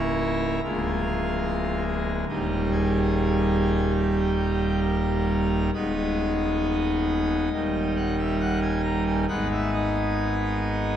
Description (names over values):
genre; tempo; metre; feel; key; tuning
classical, chorale-style piece for pipe organ; 64-73 BPM; 4/4; rubato; G# minor; A4 = 440 Hz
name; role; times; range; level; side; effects
pipe organ, full organ; solo; 0.0-11.0 s; C#1 to A#5; -22 LUFS; equal; none
room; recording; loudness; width
wet church reverb, RT60 2.5 s; none; -22 LUFS; side -10 dB against mid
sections
0.0-11.0 A section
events
none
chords
0.0 A#dim/C#; 0.6 A#7/D; 2.3 D#; 5.7 G#m/D#; 7.5 D#; 9.3 G#m